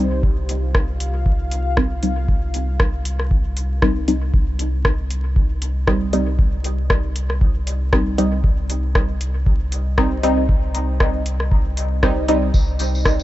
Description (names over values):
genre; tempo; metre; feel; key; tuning
dub techno; 117 BPM; 4/4; swing 55% on 16ths; C minor; A4 = 441 Hz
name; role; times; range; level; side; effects
dark analog pad; sustained chords; 0.0-4.3, 13.0-13.2 s; Eb4 to F5; -31 LUFS; left 3 dB; chorus, vintage 12-bit sampler grit, sidechain pumping
filtered dub chord stab; stabs; 0.0-12.5 s; G3 to Eb4; -23 LUFS; equal; chorus, phaser, cassette tape, sidechain pumping, dub echo
soft dub sub bass; bass; 0.0-13.2 s; C2; -22 LUFS; equal; sidechain pumping
electronic kick drum; drums; 0.2-13.2 s; none; -19 LUFS; equal; none
booming analog drum machine; drums; 0.5-13.2 s; hi-hat, rim click; -24 LUFS; equal; dub echo
tambourine; percussion; 12.5-13.2 s; none; -32 LUFS; left 2 dB; none
room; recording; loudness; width
digital ambience; vinyl crackle, nothing above 7.9 kHz; -17 LUFS; side -15 dB against mid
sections
0.0-4.3 A section; 4.3-13.2 A section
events
none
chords
0.0 Cm